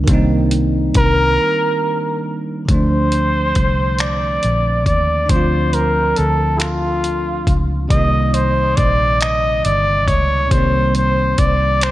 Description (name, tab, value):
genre	slow six-eight R&B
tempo	46 BPM (dotted quarters)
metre	6/8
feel	straight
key	unclear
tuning	A4 = 440 Hz
part	bell-like tine electric piano	accompaniment	0.0-11.9 s	C3 to F4	-21 LUFS	right 1 dB	lush chorus
part	vintage muted fingered electric bass	bass	0.0-11.9 s	G1 to Eb2	-18 LUFS	equal	none
part	dusty soul sampler-style drum kit	drums	0.1-11.9 s	finger snaps, hi-hat, kick drum	-18 LUFS	equal	none
part	breathy trumpet	melody	1.0-11.9 s	E4 to Eb5	-17 LUFS	equal	none
room	moderate plate reverb, RT60 2.4 s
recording	dreamy mix soaked in reverb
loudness	-14 LUFS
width	side -15 dB against mid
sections	0.0-2.7 A section; 2.7-11.9 B section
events	break 1.4-2.7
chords	0.0 Cm9; 2.7 Dm7; 7.9 Cm7